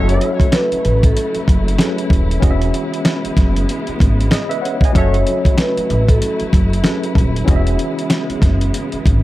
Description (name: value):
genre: hip hop, boom-bap hip-hop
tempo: 95 BPM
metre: 4/4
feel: swing 59% on 16ths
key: F# minor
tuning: A4 = 435 Hz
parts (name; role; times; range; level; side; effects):
- vibraphone with soft mallets; melody; 0.0-6.4 s; A4 to C#5; -22 LUFS; left 1 dB; high-pass filter, low-pass filter, ping-pong delay, plate reverb
- tine electric piano; accompaniment; 0.0-9.2 s; E3 to G#5; -21 LUFS; equal; overdrive, fast stereo tremolo, cassette tape, high-pass filter, low-pass filter
- warm studio string section; sustained chords; 0.0-9.2 s; C#3 to E4; -26 LUFS; equal; high-pass filter, low-pass filter
- warm horn section; stabs; 0.0-0.3, 5.0-5.2 s; C#4 to C#5; -30 LUFS; equal; high-pass filter, low-pass filter, ping-pong delay, plate reverb
- upright bass; bass; 0.0-9.2 s; D#1 to A1; -17 LUFS; equal; none
- dusty soul sampler-style drum kit; drums; 0.1-9.2 s; hi-hat, kick drum, snare drum; -14 LUFS; equal; none
room: little or no reverb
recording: vinyl crackle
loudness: -13 LUFS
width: side -16 dB against mid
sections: 0.0-9.2 A section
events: none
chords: 0.0 F#m7; 2.4 E6; 5.0 F#m7; 7.5 E6